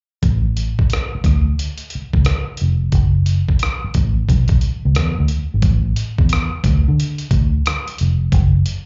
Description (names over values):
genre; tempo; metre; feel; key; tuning
R&B, neo-soul; 89 BPM; 4/4; swing 64% on 16ths; unclear; A4 = 440 Hz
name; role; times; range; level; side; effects
vintage muted fingered electric bass; bass; 0.2-8.6 s; F1 to D3; -18 LUFS; equal; none
dusty soul sampler-style drum kit; drums; 0.2-8.9 s; hi-hat, kick drum, rim click; -21 LUFS; equal; none
room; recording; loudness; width
little or no reverb; live gig heard through the venue's PA, club reverb, nothing above 7.6 kHz; -17 LUFS; mono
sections
0.2-5.6 A section; 5.6-8.9 B section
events
none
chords
none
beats
| 0.23 0.90 1.58 2.25 | 2.92 3.60 4.27 4.95 | 5.62 6.30 6.97 7.64 | 8.32